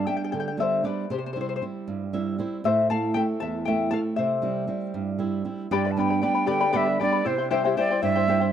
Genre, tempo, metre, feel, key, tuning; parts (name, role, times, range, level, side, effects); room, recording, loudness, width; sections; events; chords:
andean folk, Andean ensemble; 78 BPM (dotted quarters); 6/8; straight; A4 = 441 Hz
charango; accompaniment; 0.0-8.5 s; E4 to B5; -26 LUFS; left 6 dB
flamenco guitar; accompaniment; 0.0-8.5 s; E2 to E5; -26 LUFS; right 4 dB
breathy mellow quena; melody; 5.7-8.5 s; C5 to A5; -25 LUFS; right 2 dB; slapback echo
light reverb; dry, close 1970s-style studio recording; -23 LUFS; side -9 dB against mid
0.0-5.7 A section; 5.7-8.5 B section
charango solo 0.0-5.7; nylon-string guitar fill 1.9-2.6
0.0 G; 1.1 C; 2.6 Am; 4.2 C; 5.7 G; 7.3 C